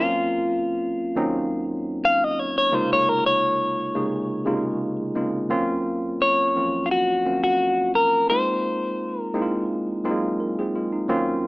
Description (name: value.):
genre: R&B.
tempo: 86 BPM.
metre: 4/4.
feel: swing 53% on 16ths.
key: Eb dorian.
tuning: A4 = 436 Hz.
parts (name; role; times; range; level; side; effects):
clean electric guitar; melody; 0.0-9.6 s; F4 to F5; -21 LUFS; left 1 dB; plate reverb.
tine electric piano; accompaniment; 0.0-11.5 s; Eb2 to F5; -24 LUFS; equal; medium stereo tremolo, plate reverb.
room: moderate studio ambience, RT60 0.5 s.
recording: small speaker sound.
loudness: -20 LUFS.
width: side -23 dB against mid.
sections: 0.0-5.5 A section; 5.5-11.5 B section.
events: clean electric guitar solo 0.0-5.5.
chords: 0.0 Ebm9; 2.7 Dbmaj9; 5.5 Ebm9; 8.3 Fm7.